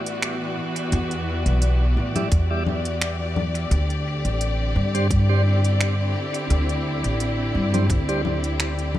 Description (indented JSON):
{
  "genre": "ambient dub",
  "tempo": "86 BPM",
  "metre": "4/4",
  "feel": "swing 54% on 16ths",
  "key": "unclear",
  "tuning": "A4 = 441 Hz",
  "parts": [
    { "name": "warm studio string section", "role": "sustained chords", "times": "0.0-9.0 s", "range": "D3 to D5", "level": "-26 LUFS", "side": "left 1 dB", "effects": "vintage 12-bit sampler grit" },
    { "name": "upright bass", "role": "bass", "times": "0.0-9.0 s", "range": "A1 to A2", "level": "-22 LUFS", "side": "equal", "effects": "none" },
    { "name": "organic electronic drum kit", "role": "drums", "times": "0.1-9.0 s", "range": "congas, finger snaps, hi-hat", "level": "-28 LUFS", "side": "left 2 dB", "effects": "studio reverb, dub echo" },
    { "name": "tonewheel organ", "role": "stabs", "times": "2.2-8.2 s", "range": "G3 to D5", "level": "-32 LUFS", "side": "right 3 dB", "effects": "slow rotary speaker, dub echo" },
    { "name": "electronic kick drum", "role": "drums", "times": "2.3-8.0 s", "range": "none", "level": "-23 LUFS", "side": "equal", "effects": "studio reverb" }
  ],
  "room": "light reverb",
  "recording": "none",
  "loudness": "-20 LUFS",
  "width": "side -13 dB against mid",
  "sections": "0.0-9.0 A section",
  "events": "none",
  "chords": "0.0 Em7; 3.7 D7sus4",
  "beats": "0.22 | 0.92 1.62 2.32 3.01 | 3.71 4.41 5.11 5.80 | 6.50 7.20 7.90 8.60"
}